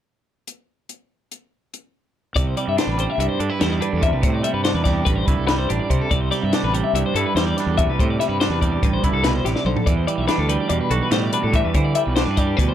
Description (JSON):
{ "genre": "math rock and midwest emo", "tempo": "287 BPM (eighths)", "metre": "9/8", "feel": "straight", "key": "C lydian", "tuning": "A4 = 439 Hz", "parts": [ { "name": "compact cocktail drum kit", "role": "drums", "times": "0.5-12.7 s", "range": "hi-hat, kick drum, snare drum, toms", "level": "-22 LUFS", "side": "left 1 dB", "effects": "none" }, { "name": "twangy electric guitar", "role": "accompaniment", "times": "2.4-12.7 s", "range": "G2 to F#4", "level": "-24 LUFS", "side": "right 7 dB", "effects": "none" }, { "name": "twelve-string electric guitar", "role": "arpeggios", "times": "2.4-12.7 s", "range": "G4 to E5", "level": "-24 LUFS", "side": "left 8 dB", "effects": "tremolo" }, { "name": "fuzz fingered electric bass", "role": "bass", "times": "2.4-12.7 s", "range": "A1 to D3", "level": "-23 LUFS", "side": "equal", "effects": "overdrive" } ], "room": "little or no reverb", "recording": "dark, warm production", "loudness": "-18 LUFS", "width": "side -10 dB against mid", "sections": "0.5-2.4 A section; 2.4-12.7 B section", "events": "drum fill 9.6-9.9", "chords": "0.5 N.C.; 2.4 C69; 9.9 Em9" }